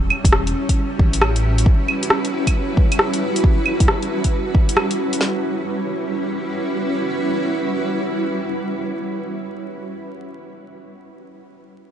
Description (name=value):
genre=future garage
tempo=135 BPM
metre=4/4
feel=swing 65% on 16ths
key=E dorian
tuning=A4 = 440 Hz
part: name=granular cloud pad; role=sustained chords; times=0.0-9.5 s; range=G3 to B4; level=-22 LUFS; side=right 1 dB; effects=built-in reverb, sidechain pumping
part: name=dark detuned saw bass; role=bass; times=0.0-1.6 s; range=E1 to A1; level=-20 LUFS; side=equal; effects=sidechain pumping
part: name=deep house drum kit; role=drums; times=0.1-5.2 s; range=claves, hi-hat, rim click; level=-21 LUFS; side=equal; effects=none
part: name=deep house drum kit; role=drums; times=0.2-5.3 s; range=kick drum, snare drum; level=-16 LUFS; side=equal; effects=none
room=light reverb, digital ambience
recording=vinyl crackle, nothing above 10.4 kHz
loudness=-17 LUFS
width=side -10 dB against mid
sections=0.0-5.2 A section; 5.2-8.8 B section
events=none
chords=0.0 Em69